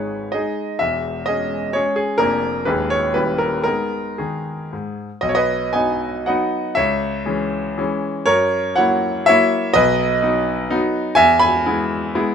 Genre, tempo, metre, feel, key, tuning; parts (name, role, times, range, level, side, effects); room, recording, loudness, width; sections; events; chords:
classical, romantic triple-time dance for piano with dotted rhythms; 107-136 BPM; 3/4; rubato; A4 = 441 Hz
clear grand piano; solo; 0.0-12.3 s; D#1 to B5; -17 LUFS; equal
light reverb; minimal, uncompressed stereo recording; -16 LUFS; side -7 dB against mid
0.0-5.2 A section; 5.2-12.3 B section
0.0 G#m; 0.8 C#m/E; 2.2 A#7/E#; 2.7 G#m/D#; 3.2 D#7b9; 3.7 G#m; 5.2 B; 6.8 C#m; 8.3 F#7; 9.8 B; 11.2 E